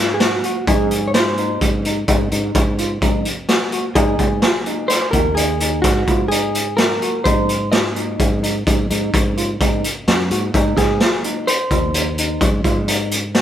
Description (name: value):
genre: progressive instrumental, band music in an uneven meter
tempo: 128 BPM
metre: 7/4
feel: straight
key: Ab mixolydian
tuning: A4 = 435 Hz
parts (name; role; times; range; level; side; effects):
- vintage hollow-body jazz guitar; melody; 0.0-13.4 s; F4 to Eb5; -21 LUFS; right 1 dB; none
- fretless electric bass; bass; 0.0-13.4 s; Eb2 to Ab2; -21 LUFS; equal; none
- bell-like tine electric piano; arpeggios; 0.2-13.4 s; Eb4 to Gb4; -25 LUFS; left 1 dB; medium stereo tremolo
- raw garage drum kit; drums; 0.2-13.4 s; hi-hat, kick drum, snare drum; -18 LUFS; equal; none
room: light reverb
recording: band playing live in one room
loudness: -15 LUFS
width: side -10 dB against mid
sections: 0.0-13.4 A section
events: none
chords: 0.0 Ab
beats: 0.21 | 0.68 1.15 1.62 2.09 2.56 3.03 3.50 | 3.97 4.44 4.91 5.38 5.85 6.32 6.79 | 7.26 7.73 8.20 8.66 9.13 9.60 10.07 | 10.54 11.01 11.48 11.95 12.41 12.88 13.35